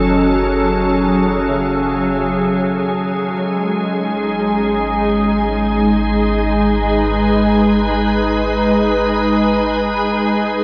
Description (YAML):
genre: ambient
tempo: free time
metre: none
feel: none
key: unclear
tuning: A4 = 440 Hz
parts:
  - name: soft additive organ-like pad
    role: sustained chords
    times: 0.0-10.6 s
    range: F#3 to B4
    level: -16 LUFS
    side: equal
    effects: ensemble chorus, built-in reverb
  - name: felt-muted upright piano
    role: arpeggios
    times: 0.0-4.0 s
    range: C#3 to E5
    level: -32 LUFS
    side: equal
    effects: diffuse ambient delay
  - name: deep rumbling drone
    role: bass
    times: 0.0-10.6 s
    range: F#1 to G#1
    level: -27 LUFS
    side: equal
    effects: built-in reverb
room: wet cathedral reverb, RT60 6.3 s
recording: worn, warbling old tape, cassette tape, warbly pitch drift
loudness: -16 LUFS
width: mono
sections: 0.0-10.6 A section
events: fade-in on felt piano 0.0-10.6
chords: 0.0 F#m9; 3.3 G#m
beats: free time